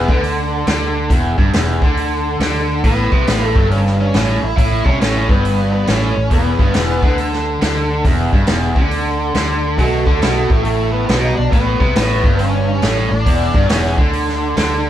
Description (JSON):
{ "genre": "blues rock power trio and southern rock", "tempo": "138 BPM", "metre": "4/4", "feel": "swing 65% on 8ths", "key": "unclear", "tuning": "A4 = 442 Hz", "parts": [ { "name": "octave-fuzz lead guitar", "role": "melody", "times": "0.0-0.2, 2.8-7.1, 9.8-13.9 s", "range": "A3 to E4", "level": "-20 LUFS", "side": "equal", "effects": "distortion" }, { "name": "raw garage guitar", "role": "riff", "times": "0.0-14.9 s", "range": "E2 to D3", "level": "-18 LUFS", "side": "equal", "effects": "overdrive" }, { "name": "vintage muted fingered electric bass", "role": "bass", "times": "0.0-14.9 s", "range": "E1 to D2", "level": "-20 LUFS", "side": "equal", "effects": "none" }, { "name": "vintage drum kit", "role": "drums", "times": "0.1-14.7 s", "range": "hi-hat, kick drum, snare drum", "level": "-17 LUFS", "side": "equal", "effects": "none" } ], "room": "moderate stone room reverb, RT60 1.3 s", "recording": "band playing live in one room, cassette tape", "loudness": "-13 LUFS", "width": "side -11 dB against mid", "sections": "0.0-14.9 A section", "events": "none", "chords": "0.0 E5; 2.8 A7; 6.3 E5; 9.8 Asus24; 11.5 A7; 13.3 Em7", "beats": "0.24 0.68 | 1.11 1.54 1.98 2.41 | 2.85 3.28 3.71 4.15 | 4.58 5.01 5.45 5.88 | 6.32 6.75 7.18 7.62 | 8.05 8.49 8.92 9.36 | 9.79 10.22 10.66 11.09 | 11.53 11.96 12.40 12.83 | 13.27 13.70 14.14 14.57" }